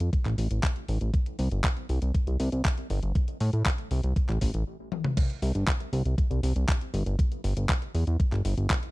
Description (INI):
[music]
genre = italo disco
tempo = 119 BPM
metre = 4/4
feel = straight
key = unclear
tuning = A4 = 438 Hz
[part]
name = fat analog bass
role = bass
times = 0.0-8.7 s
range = G1 to A2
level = -27 LUFS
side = equal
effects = tape echo
[part]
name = clean 12-bit digital drum machine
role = drums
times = 0.0-8.9 s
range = crash cymbal, handclaps, hi-hat, toms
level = -33 LUFS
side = left 1 dB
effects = studio reverb
[part]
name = electronic kick drum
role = drums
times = 0.1-8.8 s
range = none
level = -25 LUFS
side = equal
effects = studio reverb
[sound]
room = little or no reverb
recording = dry, close 1970s-style studio recording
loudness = -25 LUFS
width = side -20 dB against mid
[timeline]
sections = 0.0-5.2 A section; 5.2-8.9 B section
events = stop 4.7-5.2; drum fill 4.9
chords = none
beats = 0.13 0.63 | 1.14 1.64 2.15 2.65 | 3.15 3.66 4.16 4.67 | 5.17 5.68 6.18 6.68 | 7.19 7.69 8.20 8.70